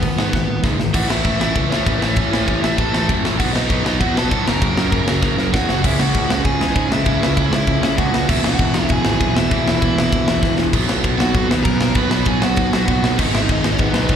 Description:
punk rock; 196 BPM; 4/4; straight; A4 = 442 Hz
biting lead guitar; melody; 0.0-14.2 s; B3 to B5; -24 LUFS; right 1 dB; overdrive, slapback echo
crunchy overdriven guitar; riff; 0.0-14.2 s; E2 to C#4; -22 LUFS; right 13 dB; slapback echo
distorted electric guitar; riff; 0.0-14.2 s; E2 to C#4; -23 LUFS; left 12 dB; distortion, slapback echo
fuzz picked electric bass; bass; 0.0-14.2 s; E1 to B2; -21 LUFS; equal; overdrive
tight metal drum kit; drums; 0.0-14.2 s; crash cymbal, hi-hat, kick drum, ride cymbal, snare drum; -20 LUFS; equal
little or no reverb; live gig heard through the venue's PA, recital hall reverb; -15 LUFS; side -8 dB against mid
0.9-5.8 A section; 5.8-14.2 B section
drum fill 0.3-0.9, 5.2-5.8, 10.4-10.7
0.0 G#m; 0.9 A; 3.4 B; 4.5 F#; 5.8 C#m; 8.3 E; 10.7 B5; 13.2 G#m

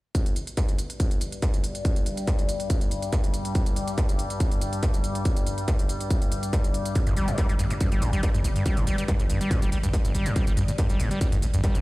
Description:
driving peak-time techno; 141 BPM; 4/4; straight; A4 = 438 Hz
overtone-sweeping drone; drone; 0.5-11.8 s; G2 to G3; -32 LUFS; left 2 dB; chorus, built-in reverb, sidechain pumping
electronic hi-hat; drums; 0.1-11.8 s; -38 LUFS; right 2 dB
electronic kick drum; drums; 0.1-11.7 s; -24 LUFS; equal; distortion
overdriven acid bass; riff; 7.0-11.8 s; G2 to G3; -28 LUFS; equal; distortion, sidechain pumping, digital delay
growling 808-style bass; bass; 7.1-11.8 s; G1; -28 LUFS; equal; tube saturation, sidechain pumping, low-pass filter
digital ambience; played on a big sound system in a bare room, stone room reverb; -22 LUFS; side -20 dB against mid
0.1-11.8 A section

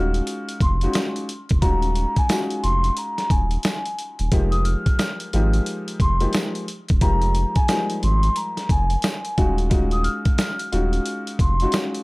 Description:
hip hop, boom-bap hip-hop; 89 BPM; 4/4; swing 62% on 16ths; F phrygian; A4 = 445 Hz
vibraphone with soft mallets; melody; 0.0-11.7 s; Ab5 to F6; -27 LUFS; equal; high-pass filter, low-pass filter
warm grand piano; accompaniment; 0.0-12.0 s; F3 to G4; -27 LUFS; left 1 dB; high-pass filter, low-pass filter
saturated sub bass; bass; 0.0-11.7 s; Eb1 to Ab1; -21 LUFS; equal; tube saturation
boom bap sampler-style drum kit; drums; 0.1-12.0 s; hi-hat, kick drum, snare drum; -22 LUFS; equal
tambourine; percussion; 1.0-11.9 s; -36 LUFS; right 2 dB
studio reverb; dry, gritty hardware recording; -19 LUFS; side -25 dB against mid
0.0-4.3 A section; 4.3-12.0 A section
0.0 Ebm11; 4.3 Fm11; 9.4 Ebm11

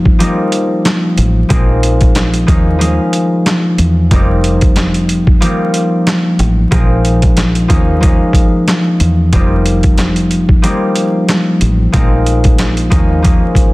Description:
hip hop, boom-bap hip-hop; 92 BPM; 4/4; swing 56% on 16ths; F minor; A4 = 440 Hz
concert harp; accompaniment; 0.0-13.7 s; F3 to Eb4; -13 LUFS; left 1 dB; high-pass filter, low-pass filter
deep dub fingered electric bass; bass; 0.0-13.4 s; F1 to E2; -14 LUFS; equal
boom bap sampler-style drum kit; drums; 0.1-13.7 s; handclaps, hi-hat, kick drum, snare drum; -12 LUFS; equal
digital ambience; dense, heavily limited modern master, vinyl crackle; -9 LUFS; side -21 dB against mid
0.0-13.7 A section
kick muted 2.8-4.1
0.0 F9sus4; 1.5 Bb9sus4; 2.5 Eb9sus4; 4.1 F9sus4; 6.7 Bb9sus4; 7.7 Eb9sus4; 9.3 F9sus4; 11.9 Bb9sus4; 12.9 Eb9sus4

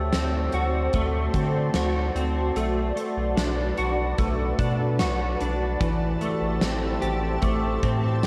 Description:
dream pop; 74 BPM; 4/4; straight; A4 = 440 Hz
shimmering ambient pad; sustained chords; 0.0-8.3 s; F#4 to A5; -32 LUFS; equal; chorus, built-in reverb
clean electric guitar; arpeggios; 0.0-8.3 s; E3 to G4; -30 LUFS; equal; ensemble chorus, delay
warm sub bass; bass; 0.0-8.3 s; A1 to D3; -29 LUFS; equal
glockenspiel with rubber mallets; texture; 0.0-1.1, 7.4-8.3 s; D6 to E6; -41 LUFS; equal; delay
huge arena drum kit; drums; 0.1-8.3 s; hi-hat, kick drum, snare drum; -32 LUFS; equal
light reverb, small room reverb; worn, warbling old tape, cassette tape, warbly pitch drift; -25 LUFS; mono
0.0-8.3 A section
0.0 D7; 2.6 Bm7; 5.8 Am7

